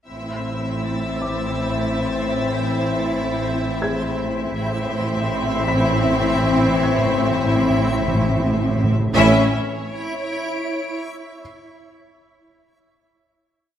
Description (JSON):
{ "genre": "cinematic, suspense film score", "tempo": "80 BPM", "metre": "3/4", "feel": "straight", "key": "A harmonic minor", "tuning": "A4 = 440 Hz", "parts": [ { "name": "clear studio violin section", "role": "melody", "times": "0.1-9.6 s", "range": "E5", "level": "-28 LUFS", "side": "left 3 dB", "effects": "none" }, { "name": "rich studio violin section", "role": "second line", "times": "0.1-9.6 s", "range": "E4", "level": "-28 LUFS", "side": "right 1 dB", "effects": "none" }, { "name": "clear studio viola section", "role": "accompaniment", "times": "0.1-9.6 s", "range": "C4 to C#4", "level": "-26 LUFS", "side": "equal", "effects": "none" }, { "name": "backwards swelling texture", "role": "sustained chords", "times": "1.7-9.6 s", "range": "C4 to E5", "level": "-28 LUFS", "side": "equal", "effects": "built-in reverb" }, { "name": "mellow French horn section", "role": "sustained chords", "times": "0.1-9.5 s", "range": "E3 to C#4", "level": "-25 LUFS", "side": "left 5 dB", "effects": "none" }, { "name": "clear studio double bass section", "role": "bass", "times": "0.1-9.6 s", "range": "A1", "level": "-26 LUFS", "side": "right 3 dB", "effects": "none" }, { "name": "rich studio cello section", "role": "bass", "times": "0.1-9.6 s", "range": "A2", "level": "-26 LUFS", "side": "right 2 dB", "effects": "none" }, { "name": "rich studio violin section", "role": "texture", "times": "0.1-11.0 s", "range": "C#5 to D7", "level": "-34 LUFS", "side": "left 3 dB", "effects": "none" }, { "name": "felt-muted upright piano", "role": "texture", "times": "1.2-9.2 s", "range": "G#4 to B6", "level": "-34 LUFS", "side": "left 1 dB", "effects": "none" }, { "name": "timpani", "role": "percussion", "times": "4.6-9.5 s", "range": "A2", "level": "-26 LUFS", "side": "left 1 dB", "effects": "none" } ], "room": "wet scoring stage reverb, RT60 1.9 s", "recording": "none", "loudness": "-18 LUFS", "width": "side -10 dB against mid", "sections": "0.1-9.2 A section; 9.2-11.4 final chord", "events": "timpani fill 4.6-9.2", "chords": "0.1 Am; 9.2 A" }